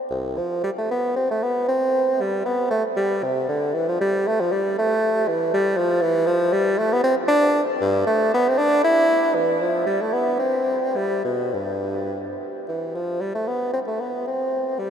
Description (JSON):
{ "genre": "classical, baroque-style fantasia for unaccompanied bassoon", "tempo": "102-121 BPM", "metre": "3/4", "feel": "rubato", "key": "C major", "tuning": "A4 = 440 Hz", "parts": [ { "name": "mellow bassoon", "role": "solo", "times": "0.1-14.9 s", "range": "C2 to E4", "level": "-19 LUFS", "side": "equal", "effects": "none" } ], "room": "wet huge ambient reverb, RT60 8.1 s", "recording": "in a vast, echoing space", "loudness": "-19 LUFS", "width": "side -8 dB against mid", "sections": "0.1-12.7 A section; 12.7-14.9 A section", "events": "none", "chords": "none" }